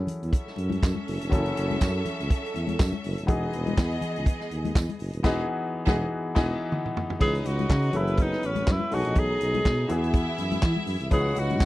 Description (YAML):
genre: disco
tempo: 122 BPM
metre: 4/4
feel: swing 56% on 16ths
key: F# dorian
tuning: A4 = 444 Hz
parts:
  - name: warm grand piano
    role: accompaniment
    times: 0.0-11.7 s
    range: B2 to B4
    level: -32 LUFS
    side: left 2 dB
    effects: none
  - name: mellow tuba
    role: bass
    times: 0.0-11.7 s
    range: D#1 to E3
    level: -28 LUFS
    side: equal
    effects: none
  - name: vintage drum kit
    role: drums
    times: 0.1-11.7 s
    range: crash cymbal, handclaps, hi-hat, kick drum, snare drum, toms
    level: -24 LUFS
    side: equal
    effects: none
  - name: congas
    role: percussion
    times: 0.1-11.7 s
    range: none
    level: -35 LUFS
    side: left 4 dB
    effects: none
  - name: clear studio string section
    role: second line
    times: 0.3-11.7 s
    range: B3 to F#5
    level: -34 LUFS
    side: right 1 dB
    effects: none
  - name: tambourine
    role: percussion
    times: 0.8-4.9, 11.6-11.7 s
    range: none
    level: -43 LUFS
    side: right 16 dB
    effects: none
  - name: clear alto saxophone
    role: melody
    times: 7.2-11.7 s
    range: C#4 to G#4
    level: -28 LUFS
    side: equal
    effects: none
  - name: dark French horn section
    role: sustained chords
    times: 11.1-11.7 s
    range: C#3 to D#5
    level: -36 LUFS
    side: left 1 dB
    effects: none
room: little or no reverb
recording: dry, close 1970s-style studio recording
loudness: -24 LUFS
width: side -17 dB against mid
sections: 0.0-7.2 A section; 7.2-11.7 B section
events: band accent 5.2-7.2; drum fill 6.2-7.2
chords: 0.0 F#m7; 3.3 Emaj9; 7.2 C#m9; 7.9 F#m11; 8.9 B13; 9.9 Eadd9; 11.1 C#m9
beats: 0.33 0.82 | 1.31 1.81 2.30 2.79 | 3.28 3.77 4.26 4.75 | 5.25 5.74 6.22 6.71 | 7.20 7.69 8.18 8.67 | 9.16 9.65 10.14 10.63 | 11.12 11.61